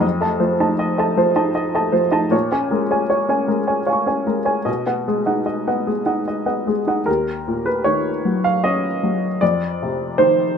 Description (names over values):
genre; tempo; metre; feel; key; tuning
neoclassical minimalist piano; 77 BPM; 3/4; rubato; unclear; A4 = 440 Hz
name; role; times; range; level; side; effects
warm upright piano; solo; 0.0-10.6 s; Eb2 to Db6; -17 LUFS; equal; none
room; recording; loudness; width
moderate small room reverb, RT60 0.5 s; none; -17 LUFS; side -7 dB against mid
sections
0.0-7.1 A section; 7.1-10.6 B section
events
none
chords
0.0 F7; 2.3 Bbm7; 4.7 B6; 7.1 Ebm7; 9.4 F7(no3)